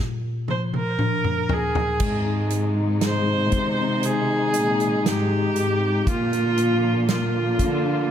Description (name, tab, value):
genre	pop ballad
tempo	59 BPM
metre	4/4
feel	straight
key	unclear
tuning	A4 = 440 Hz
part	bright tine electric piano	accompaniment	0.0-8.1 s	Bb2 to Bb4	-26 LUFS	left 3 dB	medium stereo tremolo
part	bright viola	melody	0.5-8.1 s	F4 to C5	-24 LUFS	right 1 dB	diffuse ambient delay
part	natural country drum kit	drums	0.5-7.8 s	crash cymbal, hi-hat, kick drum, snare drum, toms	-26 LUFS	equal	none
part	warm studio string section	sustained chords	2.0-8.1 s	C3 to F4	-29 LUFS	equal	none
part	warm studio cello section	bass	2.0-8.1 s	Ab2 to D3	-25 LUFS	equal	none
room	moderate plate reverb, RT60 2.4 s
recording	dreamy mix soaked in reverb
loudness	-20 LUFS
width	side -9 dB against mid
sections	0.0-2.0 A section; 2.0-8.1 B section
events	drum fill 0.0-2.0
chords	0.0 Bb; 2.0 Ab; 6.1 Bb